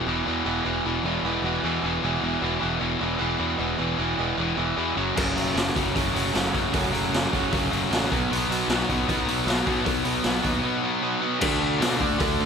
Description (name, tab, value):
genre	punk rock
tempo	153 BPM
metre	4/4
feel	straight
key	unclear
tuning	A4 = 440 Hz
part	crunchy overdriven guitar	riff	0.0-12.5 s	E2 to D4	-27 LUFS	left 12 dB	none
part	overdriven electric guitar	riff	0.0-12.5 s	E2 to D4	-27 LUFS	right 13 dB	none
part	modern bright picked electric bass	bass	0.1-12.5 s	E1 to B2	-31 LUFS	equal	none
part	fuzz guitar	riff	5.2-12.5 s	F#2 to F#4	-30 LUFS	left 1 dB	distortion
part	raw garage drum kit	drums	5.2-12.3 s	crash cymbal, hi-hat, kick drum, snare drum	-27 LUFS	equal	none
room	little or no reverb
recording	none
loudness	-22 LUFS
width	side -6 dB against mid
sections	0.0-11.4 A section; 11.4-12.5 B section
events	none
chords	0.0 E5; 5.0 F#m; 8.1 B; 11.4 D